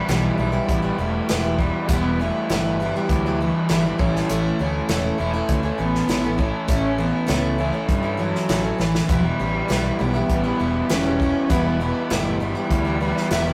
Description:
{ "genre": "folk rock and heartland rock", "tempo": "100 BPM", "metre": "4/4", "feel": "straight", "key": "E dorian", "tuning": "A4 = 441 Hz", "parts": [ { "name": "dark cello", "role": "melody", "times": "0.0-13.5 s", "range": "E3 to C#4", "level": "-27 LUFS", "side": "equal", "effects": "none" }, { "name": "picked plugged-in twelve-string acoustic guitar", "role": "accompaniment", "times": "0.0-13.5 s", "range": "E2 to E4", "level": "-27 LUFS", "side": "equal", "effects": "none" }, { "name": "raw garage guitar", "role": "riff", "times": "0.0-13.5 s", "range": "E2 to E4", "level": "-30 LUFS", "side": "equal", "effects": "overdrive" }, { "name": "fingered electric bass", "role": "bass", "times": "0.1-13.5 s", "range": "E1 to G2", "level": "-29 LUFS", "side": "equal", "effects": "none" }, { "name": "natural country drum kit", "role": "drums", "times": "0.1-13.5 s", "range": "hi-hat, kick drum, snare drum", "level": "-27 LUFS", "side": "equal", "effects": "none" } ], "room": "moderate studio reverb, RT60 0.7 s", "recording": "rough rehearsal-room recording", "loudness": "-21 LUFS", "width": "mono", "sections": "0.0-13.5 A section", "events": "drum fill 8.8-9.1", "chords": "0.0 Em; 4.0 A; 9.1 Em" }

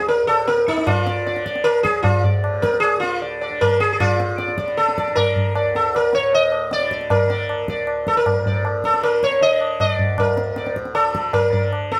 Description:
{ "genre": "indian classical, Hindustani", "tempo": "155 BPM", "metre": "4/4", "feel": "straight", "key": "D raga todi", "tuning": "A4 = 440 Hz", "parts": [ { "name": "sitar", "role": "melody", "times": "0.0-12.0 s", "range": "Eb4 to Eb5", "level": "-20 LUFS", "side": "equal", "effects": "none" }, { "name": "tanpura", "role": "drone", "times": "0.0-12.0 s", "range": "D2 to D3", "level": "-33 LUFS", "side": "equal", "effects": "none" }, { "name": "tabla", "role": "percussion", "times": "0.1-12.0 s", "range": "none", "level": "-25 LUFS", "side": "equal", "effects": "none" } ], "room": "wet studio reverb, RT60 0.5 s", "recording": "band playing live in one room", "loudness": "-19 LUFS", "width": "mono", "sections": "0.0-4.0 A section; 4.0-12.0 B section", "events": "none", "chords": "none" }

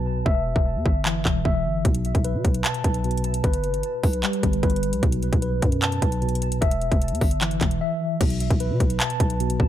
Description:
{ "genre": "hip hop, trap", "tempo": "151 BPM", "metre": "4/4", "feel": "half-time", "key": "unclear", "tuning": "A4 = 440 Hz", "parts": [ { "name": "mellow tine electric piano", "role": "arpeggios", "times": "0.0-9.7 s", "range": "B2 to A5", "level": "-25 LUFS", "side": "left 1 dB", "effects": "medium stereo tremolo, low-pass filter, digital delay" }, { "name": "growling 808-style bass", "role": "bass", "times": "0.0-9.7 s", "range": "E1 to B2", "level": "-26 LUFS", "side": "equal", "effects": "none" }, { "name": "trap drum kit", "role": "drums", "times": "0.3-9.7 s", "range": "crash cymbal, handclaps, hi-hat, kick drum", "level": "-23 LUFS", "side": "equal", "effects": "none" } ], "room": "digital ambience", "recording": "dark, warm production", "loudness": "-20 LUFS", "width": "side -11 dB against mid", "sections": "0.0-8.2 A section; 8.2-9.7 B section", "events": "break 0.0-1.8, 7.8-8.2; hi-hats muted 0.3-1.8", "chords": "0.3 Em; 1.8 Asus2/B; 3.4 G; 5.0 B5; 6.6 Em; 8.2 Gadd9 (rootless)" }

